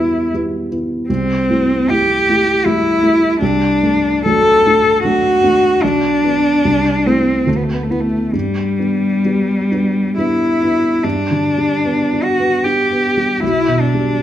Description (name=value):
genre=classical, romantic duo for cello and grand piano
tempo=62-82 BPM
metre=3/4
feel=rubato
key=G major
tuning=A4 = 440 Hz
part: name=rich cello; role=melody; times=0.0-14.2 s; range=G3 to A4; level=-14 LUFS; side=left 1 dB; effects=none
part: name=dark baby grand piano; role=accompaniment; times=0.0-14.2 s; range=B1 to E4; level=-18 LUFS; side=right 1 dB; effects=none
room=moderate recital hall reverb, RT60 1.4 s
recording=minimal, uncompressed stereo recording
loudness=-13 LUFS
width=side -11 dB against mid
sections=0.0-11.0 A section; 11.0-14.2 B section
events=none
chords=0.0 Em; 1.1 Am7/C; 3.4 D7/C; 5.8 Bm; 6.6 Am/C; 7.5 Dsus2; 8.3 G; 13.4 G/B